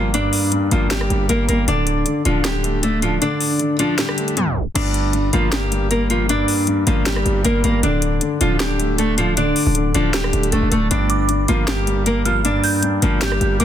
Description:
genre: hip hop, trap.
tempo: 156 BPM.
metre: 4/4.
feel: half-time.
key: G minor.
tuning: A4 = 440 Hz.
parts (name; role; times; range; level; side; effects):
nylon-string guitar; melody; 0.0-13.6 s; F3 to D5; -20 LUFS; equal; none.
warm concert grand piano; accompaniment; 0.0-13.6 s; G2 to D4; -22 LUFS; left 2 dB; none.
distorted 808-style bass; bass; 0.0-13.6 s; D1 to G1; -21 LUFS; equal; distortion.
trap drum kit; drums; 0.1-13.6 s; crash cymbal, hi-hat, rim click, snare drum; -24 LUFS; left 1 dB; none.
glassy synth bell; second line; 11.1-13.6 s; D6 to G6; -25 LUFS; right 6 dB; chorus, digital delay.
room: light reverb.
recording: dense, heavily limited modern master, tape stop, faint mains hum.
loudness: -16 LUFS.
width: side -10 dB against mid.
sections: 0.0-4.8 A section; 4.8-13.6 B section.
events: kick muted 3.2-4.8; tape stop 4.4-4.8.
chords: 0.0 Gm; 1.7 Dm; 4.8 Gm; 7.8 Dm; 10.9 Gm.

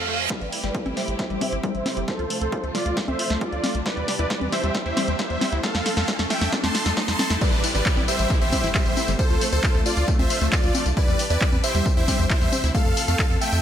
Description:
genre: uplifting trance.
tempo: 135 BPM.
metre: 4/4.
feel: straight.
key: A minor.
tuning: A4 = 440 Hz.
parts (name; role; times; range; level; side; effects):
supersaw chords; melody; 0.0-13.6 s; F4 to C6; -27 LUFS; right 1 dB; sidechain pumping, low-pass filter, digital delay.
rich studio string section; sustained chords; 0.0-13.6 s; C3 to A4; -33 LUFS; equal; sidechain pumping.
tight sequencer bass; bass; 0.0-13.6 s; G1 to F2; -25 LUFS; equal; sidechain pumping.
reverse cymbal, riser and downlifter; sound effects; 0.0-11.0 s; none; -32 LUFS; right 2 dB; none.
wide unison pluck; arpeggios; 0.1-13.5 s; G3 to A4; -32 LUFS; left 3 dB; phaser, sidechain pumping, digital delay.
electronic kick drum; drums; 0.3-13.3 s; none; -24 LUFS; equal; high-pass filter on kick, high-pass filter on room.
punchy analog drum machine; drums; 0.3-13.6 s; congas, crash cymbal, handclaps, hi-hat, snare drum, tambourine; -26 LUFS; left 1 dB; none.
plucky unison lead; second line; 7.4-13.6 s; C5 to G5; -33 LUFS; equal; sidechain pumping, digital delay.
room: little or no reverb.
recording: none.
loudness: -20 LUFS.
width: side -10 dB against mid.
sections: 0.3-7.4 A section; 7.4-13.6 B section.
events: reverse cymbal 0.0-0.3; build-up 0.3-7.4; drum fill 0.3-7.4; riser 0.3-7.4; filter sweep on supersaw synth 0.3-7.4; filter sweep on synth pluck 0.3-7.4; drop 7.4-13.6.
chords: 0.3 Am7; 2.1 Dm7; 3.9 Cadd9/E; 5.6 F; 7.4 Am7; 9.2 Dm7; 11.0 Cadd9/E; 12.7 F.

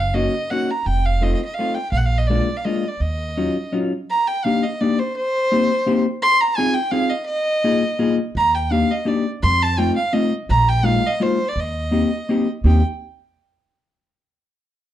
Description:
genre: musette waltz.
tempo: 168 BPM.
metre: 3/4.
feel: straight.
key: Eb minor, Eb major from 4.1 s.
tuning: A4 = 440 Hz.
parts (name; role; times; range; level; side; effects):
warm violin; melody; 0.0-12.8 s; C5 to C6; -21 LUFS; right 1 dB; none.
upright bass; bass; 0.0-3.5, 8.3-12.8 s; F1 to F2; -19 LUFS; right 1 dB; none.
hollow-body jazz guitar; accompaniment; 0.1-12.8 s; Gb3 to Ab4; -20 LUFS; left 3 dB; none.
room: moderate small room reverb, RT60 0.6 s.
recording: dark, warm production.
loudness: -17 LUFS.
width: side -12 dB against mid.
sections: 0.0-4.1 A section; 4.1-12.6 B section; 12.6-13.7 C section.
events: none.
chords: 0.0 Gb6; 0.9 F7; 1.9 Bb7; 3.0 Ebm9; 4.1 Ebmaj7; 5.2 Cm7; 6.2 Fm7; 7.3 Bb7sus4; 8.4 Ebmaj7; 9.4 F7; 10.5 Bb7sus4; 11.6 Eb6.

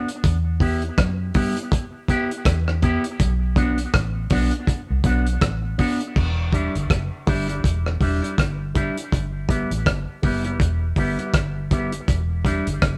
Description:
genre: roots reggae.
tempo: 81 BPM.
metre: 4/4.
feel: swing 57% on 16ths.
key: E minor.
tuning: A4 = 436 Hz.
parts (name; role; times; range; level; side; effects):
electric guitar with an envelope filter; accompaniment; 0.0-12.7 s; G3 to G4; -28 LUFS; equal; tape echo.
cloth-damped thuddy drum kit; drums; 0.1-13.0 s; crash cymbal, hi-hat, kick drum, rim click; -24 LUFS; equal; none.
vintage muted fingered electric bass; bass; 0.2-13.0 s; E1 to G2; -26 LUFS; equal; none.
room: moderate studio reverb, RT60 0.7 s.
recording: band playing live in one room.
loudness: -22 LUFS.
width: mono.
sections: 0.0-6.2 A section; 6.2-13.0 B section.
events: none.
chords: 0.2 Em; 3.2 Bm; 6.2 Em7; 9.1 G6; 12.1 Em7.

